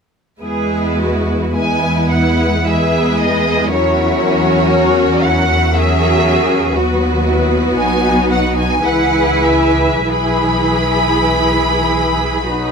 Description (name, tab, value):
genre	classical, slow romantic movement for string orchestra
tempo	46-60 BPM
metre	3/4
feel	rubato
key	E major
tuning	A4 = 439 Hz
part	warm symphonic violin section	second line	0.4-12.7 s	E4 to B4	-19 LUFS	left 1 dB	none
part	warm studio viola section	accompaniment	0.4-12.7 s	E3 to E4	-17 LUFS	left 1 dB	none
part	rich studio double bass section	bass	0.4-12.7 s	B1 to E2	-19 LUFS	right 1 dB	none
part	warm studio cello section	bass	0.4-12.7 s	D#4 to B4	-21 LUFS	right 2 dB	none
part	warm studio violin section	melody	1.6-12.7 s	C#5 to B5	-18 LUFS	left 1 dB	none
room	light reverb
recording	close, detailed microphones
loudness	-12 LUFS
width	side -5 dB against mid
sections	0.4-12.7 A section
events	none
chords	0.4 E; 3.7 F#7/E; 6.8 B/D#; 8.8 C#m7; 10.1 E/B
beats	| 0.42 1.55 2.65 | 3.71 4.73 5.75 | 6.75 7.78 8.85 | 10.10 11.33 12.49